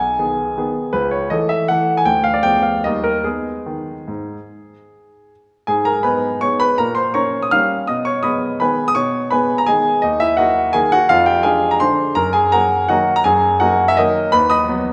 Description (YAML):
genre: classical, piano waltz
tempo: 143-175 BPM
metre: 3/4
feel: rubato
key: G# minor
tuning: A4 = 440 Hz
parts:
  - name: warm grand piano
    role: solo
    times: 0.0-14.9 s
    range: B1 to E#6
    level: -17 LUFS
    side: equal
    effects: none
room: wet recital hall reverb, RT60 1.7 s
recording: recorded in a church or concert hall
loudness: -17 LUFS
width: mono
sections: 0.0-5.7 A section; 5.7-14.9 B section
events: none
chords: 0.0 G#m/B; 0.9 A/C#; 2.1 Ddim7; 2.8 D#; 3.3 G#m; 6.8 Gdim/Bb; 7.9 G#m/B; 10.0 D#m; 11.1 Ddim/F; 12.2 D#m/F#; 14.3 B/D#